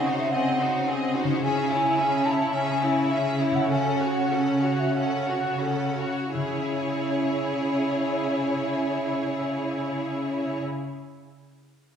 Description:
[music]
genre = classical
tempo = 80-110 BPM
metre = 4/4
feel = rubato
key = C# minor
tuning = A4 = 440 Hz
[part]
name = clear studio violin section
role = melody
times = 0.0-10.6 s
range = B#4 to F#5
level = -36 LUFS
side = left 3 dB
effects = none
[part]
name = clear symphonic violin section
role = second line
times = 0.0-10.6 s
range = E4 to A4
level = -33 LUFS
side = left 1 dB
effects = none
[part]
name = mellow hollow concert flute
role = second line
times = 0.0-10.6 s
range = C#5 to A5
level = -29 LUFS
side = equal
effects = none
[part]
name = clear symphonic viola section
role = accompaniment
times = 0.0-10.6 s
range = B#3 to F#4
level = -30 LUFS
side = right 2 dB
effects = none
[part]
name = concert harp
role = arpeggios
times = 0.0-10.9 s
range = C#3 to E5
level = -33 LUFS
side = left 3 dB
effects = none
[part]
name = rich symphonic cello section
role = bass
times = 0.0-10.6 s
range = C#3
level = -28 LUFS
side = equal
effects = none
[sound]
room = wet scoring stage reverb, RT60 1.6 s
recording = heard from further back in the room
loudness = -23 LUFS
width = side -8 dB against mid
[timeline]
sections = 0.0-6.3 A section; 6.3-11.6 B section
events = slowing down 0.3-6.3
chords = 0.0 G#7/C#; 1.4 C#m; 3.7 F#m/C#; 6.3 C#m

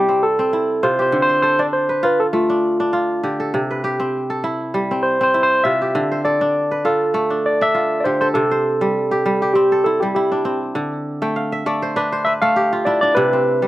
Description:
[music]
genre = west african traditional, West African string and xylophone music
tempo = 100 BPM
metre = 4/4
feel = swing 54% on 16ths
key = C major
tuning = A4 = 439 Hz
[part]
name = barky tine electric piano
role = melody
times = 0.0-13.7 s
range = F4 to F5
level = -16 LUFS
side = equal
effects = overdrive, slapback echo
[part]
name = kora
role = arpeggios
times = 0.0-13.7 s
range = C3 to G5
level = -20 LUFS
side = equal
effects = slapback echo
[sound]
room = light reverb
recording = recorded outdoors, with no room sound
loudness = -16 LUFS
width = side -16 dB against mid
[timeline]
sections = 0.0-8.4 A section; 8.4-13.7 B section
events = kora fill 11.2-13.2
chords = 0.0 C; 1.1 Dm; 3.5 C; 6.0 Dm; 8.4 C; 10.8 D5; 13.2 C

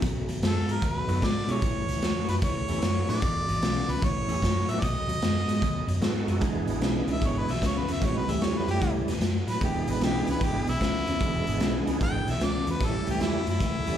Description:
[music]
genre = electric blues shuffle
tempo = 150 BPM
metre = 4/4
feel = swing 66% on 8ths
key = E mixolydian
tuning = A4 = 440 Hz
[part]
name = electric guitar through a small old amp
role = riff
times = 0.0-14.0 s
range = E2 to G#3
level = -32 LUFS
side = left 5 dB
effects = tremolo, slapback echo
[part]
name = vintage muted fingered electric bass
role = bass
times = 0.0-14.0 s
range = E1 to B2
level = -31 LUFS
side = equal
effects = none
[part]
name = raw garage drum kit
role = drums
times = 0.0-13.9 s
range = hi-hat, kick drum, snare drum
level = -29 LUFS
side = equal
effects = none
[part]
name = bright harmonica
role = melody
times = 0.5-14.0 s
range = E4 to G5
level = -31 LUFS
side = equal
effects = overdrive, slapback echo
[part]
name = bright tonewheel organ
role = accompaniment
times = 1.1-14.0 s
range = F#3 to B4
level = -32 LUFS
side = right 7 dB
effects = chorus vibrato, slow rotary speaker, slapback echo
[sound]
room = light reverb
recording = live gig heard through the venue's PA, club reverb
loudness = -24 LUFS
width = side -10 dB against mid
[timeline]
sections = 0.0-6.4 A section; 6.4-14.0 B section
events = harmonica solo 6.4-14.0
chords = 0.0 B7; 1.6 A; 3.2 E7; 4.0 A7; 4.8 B7; 6.4 E7; 8.0 A7; 9.6 E7; 12.8 A7

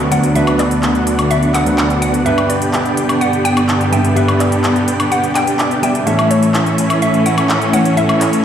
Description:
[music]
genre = EDM, festival progressive house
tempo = 126 BPM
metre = 4/4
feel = straight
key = unclear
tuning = A4 = 440 Hz
[part]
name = mallet-like synth pluck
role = melody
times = 0.0-8.4 s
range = C#5 to G5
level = -20 LUFS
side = equal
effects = chorus, phaser, tape echo
[part]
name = dark concert grand piano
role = accompaniment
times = 0.0-8.4 s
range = D2 to E5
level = -18 LUFS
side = equal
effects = none
[part]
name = clear studio string section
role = sustained chords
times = 0.0-8.4 s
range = D2 to C#4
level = -19 LUFS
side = right 1 dB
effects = vintage 12-bit sampler grit
[part]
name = dense compressed supersaw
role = riff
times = 0.0-8.4 s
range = D3 to G5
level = -16 LUFS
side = equal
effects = low-pass filter, tape echo
[part]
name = big-room dance drum kit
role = drums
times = 0.0-8.4 s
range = handclaps, hi-hat, woodblock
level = -20 LUFS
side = left 1 dB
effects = overdrive, small room reverb
[sound]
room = moderate digital room reverb, RT60 1.1 s, digital ambience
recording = played on a big sound system in a bare room, stone room reverb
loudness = -12 LUFS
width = side -9 dB against mid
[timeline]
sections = 0.0-8.4 A section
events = none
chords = 0.0 Bm/D; 2.3 G; 6.1 A

